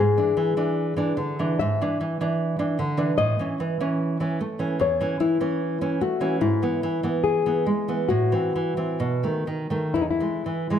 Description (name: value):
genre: romantic duo for nylon-string guitar and classical guitar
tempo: 60-77 BPM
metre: 4/4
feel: rubato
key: E major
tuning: A4 = 440 Hz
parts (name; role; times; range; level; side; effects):
- nylon-string guitar; melody; 0.0-10.8 s; D#4 to E5; -24 LUFS; left 6 dB; none
- nylon-string guitar; accompaniment; 0.0-10.8 s; E2 to D4; -24 LUFS; right 2 dB; none
room: moderate recital hall reverb, RT60 1.7 s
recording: none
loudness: -22 LUFS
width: side -9 dB against mid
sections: 0.0-10.8 A section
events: none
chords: 0.0 E7/G#; 3.2 A; 6.4 E/G#; 8.1 Am; 9.0 B7; 10.0 E